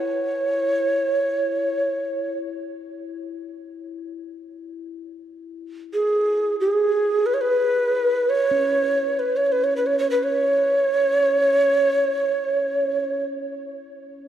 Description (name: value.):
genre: world meditative, free-time meditation music.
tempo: free time.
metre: none.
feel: none.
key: C# minor pentatonic.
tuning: A4 = 441 Hz.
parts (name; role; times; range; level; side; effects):
breathy mellow Native American-style cedar flute; melody; 0.0-13.2 s; G#4 to C#5; -19 LUFS; right 1 dB; none.
bronze singing bowl; texture; 0.0-14.3 s; C#4 to E4; -34 LUFS; left 4 dB; none.
room: wet church reverb, RT60 3.5 s.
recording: cassette tape.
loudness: -19 LUFS.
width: side -10 dB against mid.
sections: 0.0-14.3 A section.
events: none.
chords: none.